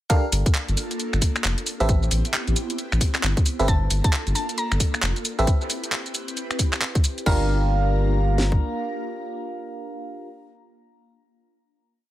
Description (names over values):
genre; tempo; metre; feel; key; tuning
UK garage, two-step garage; 134 BPM; 4/4; swing 62% on 16ths; G dorian; A4 = 442 Hz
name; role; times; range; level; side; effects
airy breathy pad; sustained chords; 0.1-10.3 s; Bb3 to Bb5; -33 LUFS; left 1 dB; chorus, phaser, sidechain pumping
FM electric piano; stabs; 0.1-10.3 s; C4 to F5; -27 LUFS; right 2 dB; chorus, vintage 12-bit sampler grit, dub echo
garage drum kit; drums; 0.1-8.6 s; kick drum, snare drum; -21 LUFS; equal; none
garage drum kit; drums; 0.1-7.4 s; crash cymbal, finger snaps, handclaps, hi-hat, shaker; -26 LUFS; equal; none
saturated sub bass; bass; 0.3-8.6 s; F1 to A1; -22 LUFS; equal; tube saturation, sidechain pumping
mallet-like synth pluck; melody; 3.7-10.3 s; A5 to Bb5; -31 LUFS; left 1 dB; chorus, tape echo
room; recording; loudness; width
digital ambience; none; -20 LUFS; side -14 dB against mid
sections
0.1-7.3 drop; 7.3-10.8 final chord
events
drop 0.1-7.3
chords
0.1 Gm9; 1.7 Am9; 3.7 Gm9; 5.2 Am9 (rootless); 7.3 Gm7